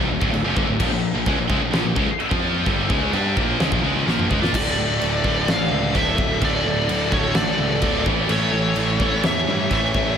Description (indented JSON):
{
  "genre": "heavy metal",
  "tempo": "128 BPM",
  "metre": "4/4",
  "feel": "straight",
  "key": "D harmonic minor",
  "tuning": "A4 = 440 Hz",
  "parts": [
    { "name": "scooped high-gain guitar", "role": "riff", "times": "0.0-10.2 s", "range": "D2 to G4", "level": "-26 LUFS", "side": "left 9 dB", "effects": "distortion, slapback echo" },
    { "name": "scooped high-gain guitar", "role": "riff", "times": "0.0-10.2 s", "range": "D2 to G4", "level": "-26 LUFS", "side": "right 9 dB", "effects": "distortion, slapback echo" },
    { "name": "scooped high-gain guitar", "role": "riff", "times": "0.0-10.2 s", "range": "D2 to G4", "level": "-27 LUFS", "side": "left 1 dB", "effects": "distortion, slapback echo" },
    { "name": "fuzz picked electric bass", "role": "bass", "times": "0.0-10.2 s", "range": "D1 to Bb2", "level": "-25 LUFS", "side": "equal", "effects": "overdrive" },
    { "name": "big rock drum kit", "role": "drums", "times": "0.2-10.1 s", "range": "china cymbal, crash cymbal, kick drum, snare drum, toms", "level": "-24 LUFS", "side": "equal", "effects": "none" },
    { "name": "high-gain lead guitar", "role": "melody", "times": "4.6-10.2 s", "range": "C#5 to F5", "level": "-24 LUFS", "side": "equal", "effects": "distortion" },
    { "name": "high-gain lead guitar", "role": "second line", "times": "4.6-10.2 s", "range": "A4 to D5", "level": "-30 LUFS", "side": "right 3 dB", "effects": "distortion, tape echo" }
  ],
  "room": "moderate lush hall reverb, RT60 2.3 s",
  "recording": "big arena sound",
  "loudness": "-18 LUFS",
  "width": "side -8 dB against mid",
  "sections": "0.0-4.5 A section; 4.5-10.2 B section",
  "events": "drum fill 4.1-4.5",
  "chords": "0.0 Dm; 0.8 Bb5; 4.5 D5; 8.1 A"
}